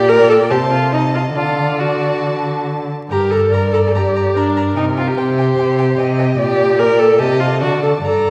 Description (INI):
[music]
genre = quick classical-period movement for string quartet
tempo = 133-151 BPM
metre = 4/4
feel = rubato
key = G minor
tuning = A4 = 440 Hz
[part]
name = dark violin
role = melody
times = 0.0-8.3 s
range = G5 to Bb5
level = -27 LUFS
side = equal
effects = none
[part]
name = dark violin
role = second line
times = 0.0-8.3 s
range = Bb4 to Eb5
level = -24 LUFS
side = equal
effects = none
[part]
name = rich viola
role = accompaniment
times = 0.0-8.3 s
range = D4 to Bb4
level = -18 LUFS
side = equal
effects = none
[part]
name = dark cello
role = bass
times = 0.0-8.3 s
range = G2 to D3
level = -21 LUFS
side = equal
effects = none
[sound]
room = wet recital hall reverb, RT60 1.6 s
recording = heard from further back in the room, vinyl crackle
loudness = -15 LUFS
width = mono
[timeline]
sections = 0.0-8.3 A section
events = none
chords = 0.0 Gm/Bb; 0.5 Adim/C; 1.4 D; 3.1 Gm; 4.8 Cm; 6.4 Gm/Bb; 7.2 Am7b5/C; 7.6 D